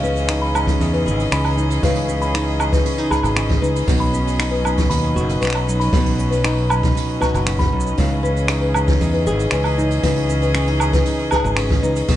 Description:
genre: folktronica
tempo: 117 BPM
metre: 4/4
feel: straight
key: unclear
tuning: A4 = 441 Hz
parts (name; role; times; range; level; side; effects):
- music box; second line; 0.0-12.0 s; B4 to B5; -24 LUFS; left 3 dB; ping-pong delay
- bright string quartet; sustained chords; 0.0-12.2 s; E3 to D#5; -27 LUFS; equal; none
- flamenco guitar; arpeggios; 0.0-12.2 s; B2 to G#4; -23 LUFS; equal; vintage 12-bit sampler grit, digital delay
- modern bright fingered electric bass; bass; 0.0-12.2 s; F#1 to E2; -20 LUFS; equal; tube saturation
- jazz brush drum kit; drums; 0.0-12.2 s; cabasa, finger snaps, hi-hat, woodblock; -25 LUFS; right 2 dB; none
- kick drum; drums; 0.7-12.2 s; none; -20 LUFS; equal; none
room: studio reverb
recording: nothing above 10.3 kHz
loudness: -16 LUFS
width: side -12 dB against mid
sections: 0.0-12.2 A section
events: none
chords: 0.0 C#madd9; 3.9 Badd9; 8.0 C#madd9

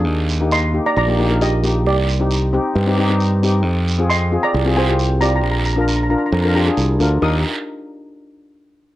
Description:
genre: calypso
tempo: 134 BPM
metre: 4/4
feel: straight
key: Eb major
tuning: A4 = 440 Hz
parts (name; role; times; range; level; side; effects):
- steel pan; accompaniment; 0.0-7.4 s; Bb3 to Bb4; -20 LUFS; left 2 dB; plate reverb
- modern bright fingered electric bass; bass; 0.0-7.4 s; Bb1 to G2; -17 LUFS; right 1 dB; none
- guiro; percussion; 0.1-7.4 s; none; -28 LUFS; right 5 dB; none
- steel pan; melody; 0.5-7.4 s; G4 to Eb6; -21 LUFS; right 2 dB; plate reverb
room: moderate small room reverb, RT60 0.6 s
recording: worn, warbling old tape, cassette tape, warbly pitch drift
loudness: -15 LUFS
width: side -15 dB against mid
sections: 0.0-7.2 A section; 7.2-9.0 B section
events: none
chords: 0.1 Ebmaj7; 1.9 Cm; 3.6 Fm; 5.4 Bb; 7.2 Eb

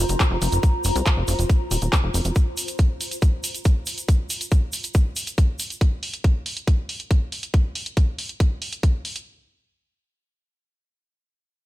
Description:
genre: psychedelic trance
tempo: 139 BPM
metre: 4/4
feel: straight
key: unclear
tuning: A4 = 441 Hz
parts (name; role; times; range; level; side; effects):
- plucky analog bass; bass; 0.0-2.3 s; Eb1 to C2; -22 LUFS; equal; none
- granular cloud pad; texture; 0.0-2.4 s; F4 to Bb5; -30 LUFS; left 1 dB; built-in reverb, sidechain pumping
- drum and bass drum kit; drums; 0.1-9.2 s; handclaps, hi-hat; -28 LUFS; equal; studio reverb
- tube shaker; percussion; 0.1-5.8 s; none; -31 LUFS; right 1 dB; none
- electronic kick drum; drums; 0.2-8.9 s; none; -18 LUFS; equal; studio reverb
room: little or no reverb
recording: none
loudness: -20 LUFS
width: side -16 dB against mid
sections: 0.0-9.3 A section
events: none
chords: 0.0 F5

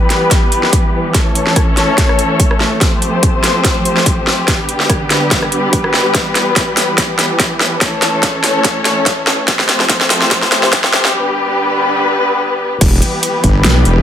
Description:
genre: heavy wobble dubstep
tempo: 144 BPM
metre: 4/4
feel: swing 54% on 16ths, half-time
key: E phrygian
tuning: A4 = 441 Hz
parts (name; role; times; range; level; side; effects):
- muted studio string section; sustained chords; 0.0-14.0 s; D3 to C#5; -15 LUFS; left 1 dB; sidechain pumping, low-pass filter
- big-room dance drum kit; drums; 0.1-13.9 s; crash cymbal, hi-hat, rim click, snare drum; -14 LUFS; equal; overdrive, high-pass filter on snare, high-pass filter on hats, high-pass filter on cymbals
- electronic kick drum; drums; 0.3-13.5 s; none; -15 LUFS; equal; overdrive
- wobble bass; bass; 12.8-14.0 s; E1 to B1; -11 LUFS; equal; chorus, overdrive
room: moderate digital room reverb, RT60 1.1 s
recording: high-pass filter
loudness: -10 LUFS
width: side -9 dB against mid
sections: 0.0-12.8 A section; 12.8-14.0 B section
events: build-up 0.0-12.8; drum fill 0.0-11.1; filter sweep 0.0-12.8; break 11.1-12.8; drop 12.8-14.0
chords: 0.0 Em; 1.1 A/E; 2.8 Fadd9; 4.5 G; 6.1 Em; 7.8 A/E; 9.5 Fadd9; 11.1 G; 12.8 Em

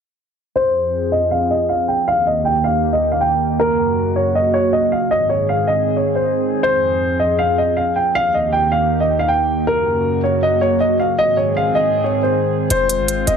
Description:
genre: hip hop, trap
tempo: 158 BPM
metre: 4/4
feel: half-time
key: F minor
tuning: A4 = 440 Hz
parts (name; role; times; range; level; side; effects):
- dark concert grand piano; melody; 0.6-13.4 s; Bb4 to G5; -16 LUFS; equal; low-pass filter, analog delay
- warbly tape-like pad; sustained chords; 0.7-13.4 s; Eb2 to Ab4; -20 LUFS; right 1 dB; chorus, built-in reverb, low-pass filter
- short 808-style bass; bass; 12.7-13.4 s; F1 to Ab1; -22 LUFS; equal; none
- electronic hi-hat; drums; 12.7-13.4 s; none; -22 LUFS; right 2 dB; none
room: light reverb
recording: echo-heavy mix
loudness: -15 LUFS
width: side -7 dB against mid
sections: 0.6-12.7 A section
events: filter sweep 0.6-12.7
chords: 0.6 Fm; 2.1 Eb; 3.6 Gb; 5.1 Ab; 6.6 Fm; 8.1 Eb; 9.7 Gb; 11.2 Ab; 12.7 Fm

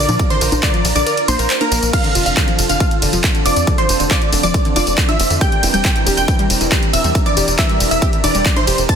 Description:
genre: uplifting trance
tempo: 138 BPM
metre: 4/4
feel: straight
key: F major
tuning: A4 = 440 Hz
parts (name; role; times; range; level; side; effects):
- supersaw stab; melody; 0.0-9.0 s; Bb4 to A5; -20 LUFS; right 1 dB; sidechain pumping, dub echo
- wide unison pluck; second line; 0.0-9.0 s; Bb5 to A6; -26 LUFS; right 1 dB; sidechain pumping, dub echo
- analog string pad; sustained chords; 0.0-9.0 s; D3 to C5; -24 LUFS; right 2 dB; ensemble chorus, sidechain pumping
- wide unison pluck; arpeggios; 0.0-8.7 s; D3 to Bb4; -23 LUFS; left 1 dB; sidechain pumping, dub echo
- tight sequencer bass; bass; 0.0-8.9 s; E1 to Bb2; -20 LUFS; equal; sidechain pumping
- punchy analog drum machine; drums; 0.1-9.0 s; congas, crash cymbal, handclaps, hi-hat, ride cymbal, tambourine; -19 LUFS; equal; overdrive
- electronic kick drum; drums; 0.2-9.0 s; none; -17 LUFS; equal; none
room: light reverb, digital ambience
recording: dense, heavily limited modern master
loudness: -12 LUFS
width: side -7 dB against mid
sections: 0.0-1.9 A section; 1.9-9.0 A section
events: drop 0.0-1.9, 1.9-9.0; kick drops out 1.1-1.9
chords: 0.0 Bb; 1.9 F6; 5.4 C7/E

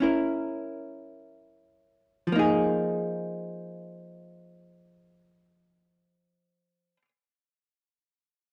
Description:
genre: jazz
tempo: free time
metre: none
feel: none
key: F minor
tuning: A4 = 440 Hz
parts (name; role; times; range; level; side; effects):
- archtop guitar, miked and amplified; accompaniment; 0.0-7.1 s; F3 to Bb4; -29 LUFS; equal; none
room: moderate large studio reverb, RT60 1.0 s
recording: dark, warm production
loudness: -28 LUFS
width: mono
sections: 0.0-2.3 A section; 2.3-7.1 B section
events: slowing down 0.0-2.3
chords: 0.0 Gb7; 2.3 Fm7

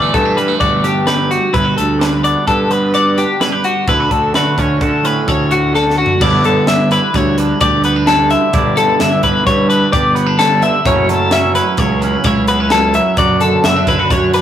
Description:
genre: math rock and midwest emo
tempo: 129 BPM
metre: 5/4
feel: straight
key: G lydian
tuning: A4 = 440 Hz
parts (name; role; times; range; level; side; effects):
- twangy electric guitar; accompaniment; 0.0-14.4 s; F#2 to A4; -18 LUFS; right 6 dB; none
- twelve-string electric guitar; arpeggios; 0.0-14.4 s; F#4 to E5; -14 LUFS; left 3 dB; none
- fuzz picked electric bass; bass; 0.0-14.4 s; F#1 to D3; -17 LUFS; equal; overdrive
- crisp fusion drum kit; drums; 0.1-14.4 s; crash cymbal, hi-hat, kick drum, snare drum, toms; -20 LUFS; equal; none
room: moderate studio reverb, RT60 0.6 s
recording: rough rehearsal-room recording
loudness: -11 LUFS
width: side -10 dB against mid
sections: 0.0-6.2 A section; 6.2-14.4 B section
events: drum fill 5.7-6.2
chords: 0.0 Em11/G; 3.9 Dmaj7; 6.2 G69; 10.9 F#m7; 13.2 D6/F#

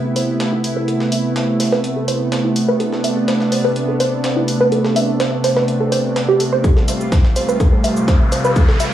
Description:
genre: melodic techno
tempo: 125 BPM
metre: 4/4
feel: straight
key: A minor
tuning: A4 = 440 Hz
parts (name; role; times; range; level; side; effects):
- lush unison pad; sustained chords; 0.0-8.9 s; C3 to F4; -18 LUFS; right 1 dB; chorus, sidechain pumping
- tight sequenced synth; arpeggios; 0.0-8.8 s; E4 to E5; -20 LUFS; right 1 dB; chorus, sidechain pumping, analog delay
- breakbeat sampler-style drum kit; drums; 0.2-8.9 s; hi-hat, snare drum; -29 LUFS; equal; sidechain pumping on hats, high-pass filter on hats, small room ambience, high-pass filter on snare
- electronic hi-hat and shaker; drums; 0.2-8.9 s; none; -26 LUFS; left 1 dB; sidechain pumping on hats, high-pass filter on hats, small room ambience, sidechain pumping on perc, high-pass filter on perc
- electronic kick drum; drums; 6.6-8.7 s; none; -13 LUFS; equal; small room ambience
- riser; sound effects; 7.3-8.9 s; none; -27 LUFS; left 1 dB; none
room: light reverb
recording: dry, gritty hardware recording, studio reverb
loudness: -14 LUFS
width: side -11 dB against mid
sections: 0.0-8.9 A section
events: build-up 0.0-8.9; filter sweep on synth arpeggio sound 0.0-8.9; drum fill 6.6-8.9; riser 7.3-8.9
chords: 0.0 Amadd9; 6.6 Fadd9

